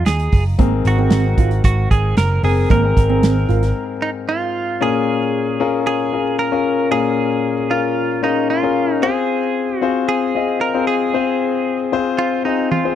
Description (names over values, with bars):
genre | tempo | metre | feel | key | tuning
piano-driven pop | 114 BPM | 4/4 | straight | Bb minor | A4 = 440 Hz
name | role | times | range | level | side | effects
direct-recorded clean electric guitar | melody | 0.0-12.9 s | Eb4 to Bb4 | -21 LUFS | right 4 dB | none
clear concert grand piano | accompaniment | 0.0-12.9 s | Ab2 to Eb5 | -19 LUFS | left 7 dB | none
vintage muted picked electric bass | bass | 0.1-3.7 s | Gb1 to Eb2 | -16 LUFS | right 1 dB | none
loose indie drum kit | drums | 0.1-3.8, 12.7-12.8 s | hi-hat, kick drum, snare drum, toms | -16 LUFS | right 1 dB | none
fingerpicked steel-string acoustic guitar | riff | 0.6-3.6 s | Bb3 to F4 | -22 LUFS | right 14 dB | none
room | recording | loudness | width
studio reverb | dry, close 1970s-style studio recording | -15 LUFS | side -10 dB against mid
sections
0.0-4.8 A section; 4.8-12.9 B section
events
break 3.8-4.8; drum fill 12.7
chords
0.0 Fm7; 0.6 Abadd9; 4.8 Bbm7; 9.0 Fm